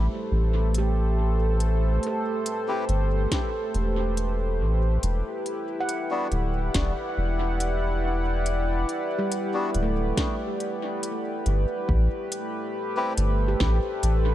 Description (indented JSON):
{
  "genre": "ambient dub",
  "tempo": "70 BPM",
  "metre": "4/4",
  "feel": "straight",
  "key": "A dorian",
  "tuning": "A4 = 440 Hz",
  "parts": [
    { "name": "warm analog pad", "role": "sustained chords", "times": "0.0-14.3 s", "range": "A3 to F#5", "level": "-29 LUFS", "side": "equal", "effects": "chorus, vintage 12-bit sampler grit" },
    { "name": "handpan", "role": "arpeggios", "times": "0.0-14.3 s", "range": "G3 to F#5", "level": "-34 LUFS", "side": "right 3 dB", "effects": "tape echo" },
    { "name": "soft dub sub bass", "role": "bass", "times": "0.0-14.3 s", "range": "D1 to A1", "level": "-23 LUFS", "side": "equal", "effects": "none" },
    { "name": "organic electronic drum kit", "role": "drums", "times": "0.7-14.2 s", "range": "hi-hat, snare drum", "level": "-33 LUFS", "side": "equal", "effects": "overdrive, studio reverb, dub echo" },
    { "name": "melodica", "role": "stabs", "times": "2.7-13.1 s", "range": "G3 to B4", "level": "-34 LUFS", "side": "left 2 dB", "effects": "vintage 12-bit sampler grit, dub echo" },
    { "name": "electronic kick drum", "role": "drums", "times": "3.3-13.8 s", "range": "none", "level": "-28 LUFS", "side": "equal", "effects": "studio reverb" }
  ],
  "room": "light reverb, digital ambience",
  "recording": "none",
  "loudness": "-23 LUFS",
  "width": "side -13 dB against mid",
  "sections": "0.0-11.9 A section; 11.9-14.3 B section",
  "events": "none",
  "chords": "0.0 Am7; 5.0 Em7; 11.9 Am7",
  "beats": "0.75 | 1.60 2.46 3.32 4.17 | 5.03 5.89 6.75 7.60 | 8.46 9.32 10.18 11.03 | 11.89 12.75 13.60"
}